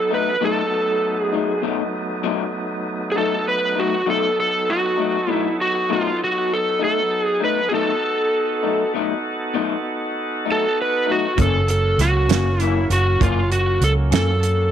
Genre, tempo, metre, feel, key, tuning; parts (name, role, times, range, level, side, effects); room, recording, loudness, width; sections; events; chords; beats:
slow blues; 66 BPM (dotted quarters); 12/8; straight; B mixolydian; A4 = 439 Hz
overdriven slide guitar; melody; 0.0-14.7 s; E#4 to B4; -20 LUFS; equal
bright tonewheel organ; sustained chords; 0.0-14.7 s; F#3 to A4; -26 LUFS; right 2 dB; slow rotary speaker
electric guitar through a small old amp; accompaniment; 0.1-14.3 s; F#2 to D#4; -26 LUFS; left 12 dB; harmonic tremolo
vintage muted fingered electric bass; bass; 11.4-14.7 s; F#1 to F#2; -19 LUFS; right 1 dB
warm soul drum kit; drums; 11.4-14.6 s; hi-hat, kick drum, snare drum; -22 LUFS; right 5 dB
light reverb, small room reverb; 1960s-style stereo; -18 LUFS; side -9 dB against mid
0.0-14.7 A section
0.0 B7; 11.4 F#7
| 0.42 1.33 2.24 3.15 | 4.07 4.98 5.89 6.81 | 7.72 8.63 9.55 10.46 | 11.38 12.29 13.20 14.12